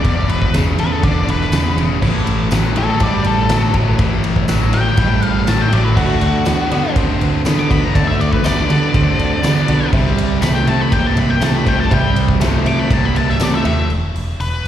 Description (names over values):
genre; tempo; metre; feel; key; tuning
classic rock; 121 BPM; 4/4; straight; E minor; A4 = 442 Hz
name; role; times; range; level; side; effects
octave-fuzz lead guitar; melody; 0.0-14.7 s; F#4 to D6; -22 LUFS; left 3 dB; distortion, slapback echo, digital delay
crunchy overdriven guitar; riff; 0.0-13.9 s; E2 to C4; -19 LUFS; right 6 dB; slapback echo
tight distorted guitar; riff; 0.0-13.9 s; E2 to C4; -22 LUFS; left 10 dB; distortion, slapback echo
fingered electric bass; bass; 0.0-14.7 s; E1 to D3; -18 LUFS; equal; none
big rock drum kit; drums; 0.0-14.7 s; crash cymbal, hi-hat, kick drum, ride cymbal, snare drum; -20 LUFS; equal; none
tambourine; percussion; 0.5-13.5 s; none; -36 LUFS; right 2 dB; none
dark grand piano; accompaniment; 6.0-13.9 s; F#4 to G5; -28 LUFS; right 2 dB; slapback echo
room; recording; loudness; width
light reverb; live gig heard through the venue's PA, recital hall reverb; -13 LUFS; side -10 dB against mid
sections
0.0-13.9 A section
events
lead electric guitar solo 0.0-13.9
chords
0.0 E5; 2.0 A5; 6.0 D; 9.9 C; 13.9 E5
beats
| 0.04 0.54 1.03 1.53 | 2.02 2.52 3.01 3.50 | 4.00 4.49 4.98 5.48 | 5.97 6.46 6.96 7.45 | 7.95 8.44 8.94 9.43 | 9.93 10.42 10.92 11.41 | 11.91 12.41 12.90 13.40 | 13.90 14.40